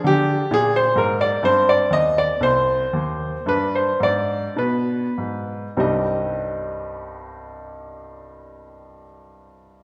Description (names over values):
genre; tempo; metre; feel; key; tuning
classical, baroque-style suite movement for grand piano; 47-66 BPM; 4/4; rubato; C minor; A4 = 438 Hz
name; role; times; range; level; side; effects
bright baby grand piano; solo; 0.0-9.8 s; C2 to Eb5; -21 LUFS; equal; none
room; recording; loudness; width
wet recital hall reverb, RT60 1.9 s; recorded in a church or concert hall; -20 LUFS; mono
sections
0.0-5.8 A section; 5.8-9.8 B section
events
slowing down 0.0-5.8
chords
0.0 D(b5, no3); 1.4 Cm; 3.4 G; 5.8 Cm